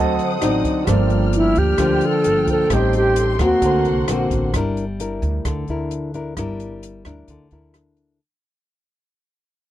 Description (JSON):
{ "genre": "bossa nova", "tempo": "131 BPM", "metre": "4/4", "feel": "straight", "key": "unclear", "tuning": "A4 = 440 Hz", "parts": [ { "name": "dark concert grand piano", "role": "accompaniment", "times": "0.0-4.6 s", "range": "Bb3 to A5", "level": "-25 LUFS", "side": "right 8 dB", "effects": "none" }, { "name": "nylon-string guitar", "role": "accompaniment", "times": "0.0-8.2 s", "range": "G2 to Bb4", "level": "-22 LUFS", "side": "left 3 dB", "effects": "none" }, { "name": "warm studio string section", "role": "sustained chords", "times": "0.0-4.5 s", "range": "Bb3 to F6", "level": "-29 LUFS", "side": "equal", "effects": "none" }, { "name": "upright bass", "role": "bass", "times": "0.0-8.2 s", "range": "G1 to Eb2", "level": "-23 LUFS", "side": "right 1 dB", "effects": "none" }, { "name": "open jazz drum kit", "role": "drums", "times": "0.2-8.1 s", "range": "hi-hat, kick drum, rim click", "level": "-27 LUFS", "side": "equal", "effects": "none" }, { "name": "bright reedy alto flute", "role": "melody", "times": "1.4-4.3 s", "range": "E4 to A4", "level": "-18 LUFS", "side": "equal", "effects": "none" } ], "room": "little or no reverb", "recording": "dry, close 1970s-style studio recording", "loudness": "-16 LUFS", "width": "side -13 dB against mid", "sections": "0.0-4.5 A section; 4.5-8.2 B section", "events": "grand piano fill 0.0-0.9; fade-out 4.5-8.2", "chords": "0.0 D7b9; 0.9 Gm7; 2.7 Am7b5; 3.6 D7b13; 4.5 Gm6", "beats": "0.42 | 0.88 1.33 1.79 2.25 | 2.70 3.16 3.62 4.08 | 4.53 4.99 5.45 5.91 | 6.37 6.82 7.28 7.74" }